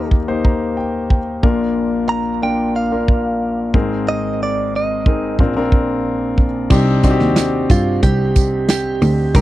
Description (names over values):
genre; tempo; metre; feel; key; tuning
piano-driven pop; 91 BPM; 4/4; straight; unclear; A4 = 442 Hz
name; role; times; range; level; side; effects
direct-recorded clean electric guitar; melody; 0.0-9.4 s; F4 to Bb5; -21 LUFS; right 4 dB; none
warm concert grand piano; accompaniment; 0.0-9.4 s; Ab1 to Bb5; -18 LUFS; left 2 dB; none
modern studio drum kit; drums; 0.1-9.4 s; crash cymbal, hi-hat, kick drum, snare drum; -14 LUFS; equal; none
clear cello; bass; 6.7-9.4 s; C2 to G2; -17 LUFS; equal; none
tambourine; percussion; 6.7-9.4 s; none; -31 LUFS; right 21 dB; none
room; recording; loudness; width
little or no reverb; dry, close 1970s-style studio recording; -14 LUFS; side -15 dB against mid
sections
0.0-6.7 A section; 6.7-9.4 B section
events
grand piano fill 0.1-1.4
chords
0.0 Eb; 1.4 Bb; 3.7 Abadd9; 5.4 Bbadd9; 6.7 Cmadd9